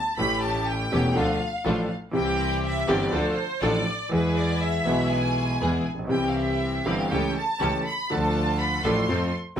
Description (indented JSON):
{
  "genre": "tango",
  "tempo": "122 BPM",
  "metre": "4/4",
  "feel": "rubato",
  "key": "A minor",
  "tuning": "A4 = 444 Hz",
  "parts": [
    { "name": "clear studio violin section", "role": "second line", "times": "0.0-9.3 s", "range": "B4 to C6", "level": "-28 LUFS", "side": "right 1 dB", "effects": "none" },
    { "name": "clear concert grand piano", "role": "accompaniment", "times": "0.2-9.6 s", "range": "E1 to A4", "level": "-25 LUFS", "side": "equal", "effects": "none" },
    { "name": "warm studio string section", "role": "stabs", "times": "0.2-9.6 s", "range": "A3 to A4", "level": "-32 LUFS", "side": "left 2 dB", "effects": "none" },
    { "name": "clear double bass", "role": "bass", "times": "0.2-9.6 s", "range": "E1 to F2", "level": "-30 LUFS", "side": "equal", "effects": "none" }
  ],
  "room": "moderate small room reverb, RT60 0.5 s",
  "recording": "none",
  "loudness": "-22 LUFS",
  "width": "side -9 dB against mid",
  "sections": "0.0-9.6 A section",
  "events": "violin section solo 0.0-9.6",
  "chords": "0.2 A7; 1.2 Dm; 2.2 C; 3.1 Dm; 4.1 E; 6.1 C; 7.1 A7/C#; 8.1 Dm; 9.1 F",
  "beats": "| 0.19 0.69 1.18 1.66 | 2.15 2.64 3.13 3.62 | 4.12 4.61 5.11 5.61 | 6.11 6.61 7.11 7.61 | 8.10 8.59 9.08 9.57"
}